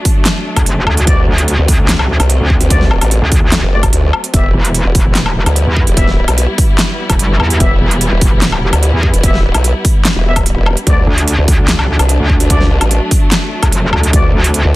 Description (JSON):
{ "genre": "heavy wobble dubstep", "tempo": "147 BPM", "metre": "4/4", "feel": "half-time", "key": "unclear", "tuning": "A4 = 438 Hz", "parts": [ { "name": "warm studio string section", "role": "sustained chords", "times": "0.0-14.8 s", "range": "F#3 to E4", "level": "-21 LUFS", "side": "left 1 dB", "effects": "sidechain pumping, low-pass filter" }, { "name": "big-room dance drum kit", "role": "drums", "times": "0.1-14.6 s", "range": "handclaps, hi-hat, snare drum, woodblock", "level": "-16 LUFS", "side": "equal", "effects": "none" }, { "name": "electronic kick drum", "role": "drums", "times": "0.1-14.2 s", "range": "none", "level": "-12 LUFS", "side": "equal", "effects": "none" }, { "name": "metallic wobble bass", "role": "bass", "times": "0.6-14.6 s", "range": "E1 to E2", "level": "-13 LUFS", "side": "equal", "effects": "distortion, chorus, overdrive" }, { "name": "dark brass ensemble", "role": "stabs", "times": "1.1-14.2 s", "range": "A3 to E5", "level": "-22 LUFS", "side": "left 3 dB", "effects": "dub echo" }, { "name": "formant-sweep wobble bass", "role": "bass", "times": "1.1-14.7 s", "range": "E1 to D2", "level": "-12 LUFS", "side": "equal", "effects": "chorus, overdrive" } ], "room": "little or no reverb", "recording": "dense, heavily limited modern master", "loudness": "-9 LUFS", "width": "side -18 dB against mid", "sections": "0.0-14.8 A section", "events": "none", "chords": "0.0 D; 4.3 Em; 10.9 D" }